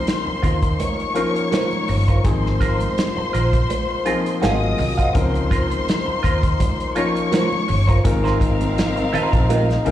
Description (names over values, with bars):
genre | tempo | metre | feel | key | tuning
lush 1970s-style soul | 83 BPM | 4/4 | swing 54% on 16ths | Ab major | A4 = 440 Hz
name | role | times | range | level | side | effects
dark studio string section | second line | 0.0-9.9 s | C4 to Eb6 | -25 LUFS | left 3 dB | plate reverb, slapback echo
warm concert grand piano | accompaniment | 0.0-9.9 s | F3 to Db5 | -25 LUFS | left 4 dB | plate reverb, slapback echo
mellow French horn section | sustained chords | 0.0-9.9 s | Bb2 to F4 | -30 LUFS | left 1 dB | none
warm soul drum kit | drums | 0.1-9.9 s | hi-hat, kick drum, snare drum | -22 LUFS | equal | none
electric guitar through a small old amp | riff | 0.3-9.9 s | F4 to F5 | -26 LUFS | right 5 dB | wah, slapback echo
vintage muted fingered electric bass | bass | 0.3-9.9 s | G1 to Eb2 | -21 LUFS | equal | none
congas | percussion | 0.3-9.8 s | none | -31 LUFS | right 4 dB | slapback echo
room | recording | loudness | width
light reverb | live gig heard through the venue's PA, recital hall reverb | -17 LUFS | side -12 dB against mid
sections
0.0-8.0 A section; 8.0-9.9 B section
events
none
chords
0.0 Dbmaj13; 2.2 Ab69; 4.4 Ab13; 5.2 Dbmaj13; 8.0 Ab69